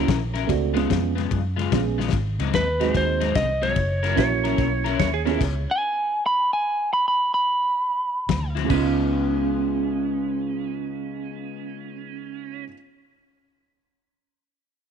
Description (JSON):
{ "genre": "electric blues shuffle", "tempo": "146 BPM", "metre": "4/4", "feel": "swing 66% on 8ths", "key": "Db mixolydian", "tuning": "A4 = 441 Hz", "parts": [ { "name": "dark upright piano", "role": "accompaniment", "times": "0.0-5.4, 8.6-12.7 s", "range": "Db3 to Ab4", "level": "-27 LUFS", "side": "right 13 dB", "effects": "none" }, { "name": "electric guitar at the edge of break-up", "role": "riff", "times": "0.0-5.4, 8.6-12.7 s", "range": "Ab2 to Bb4", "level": "-28 LUFS", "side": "left 13 dB", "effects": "analog chorus" }, { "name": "vintage muted fingered electric bass", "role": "bass", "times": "0.0-5.7, 8.3-12.6 s", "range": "Gb1 to Gb2", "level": "-26 LUFS", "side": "equal", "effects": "none" }, { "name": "natural country drum kit", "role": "drums", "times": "0.1-5.5, 8.3-8.8 s", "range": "crash cymbal, kick drum, ride cymbal, snare drum", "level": "-27 LUFS", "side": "left 5 dB", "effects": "none" }, { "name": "lightly driven lead guitar", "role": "melody", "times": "2.5-8.5 s", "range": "Cb5 to Cb6", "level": "-22 LUFS", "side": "right 1 dB", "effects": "none" }, { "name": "clean lap steel guitar", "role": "second line", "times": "4.2-5.4, 8.7-12.6 s", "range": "Db4 to Db5", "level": "-28 LUFS", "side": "right 10 dB", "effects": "none" } ], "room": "light reverb, studio reverb", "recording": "1960s-style stereo with parts hard left and right", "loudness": "-20 LUFS", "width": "side -8 dB against mid", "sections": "0.0-8.7 A section; 8.7-12.0 B section", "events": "drum fill 1.9", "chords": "0.5 Db7; 2.1 Ab7; 3.8 Gb7; 5.4 Db5; 8.3 D9; 8.7 Db7", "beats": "0.08 | 0.49 0.90 1.31 1.72 | 2.13 2.54 2.95 3.36 | 3.77 4.18 4.59 5.00 | 5.41 5.82 6.23 6.64 | 7.05 7.46 7.87 8.28 | 8.70 9.11 9.52 9.93 | 10.34 10.76 11.17 11.58" }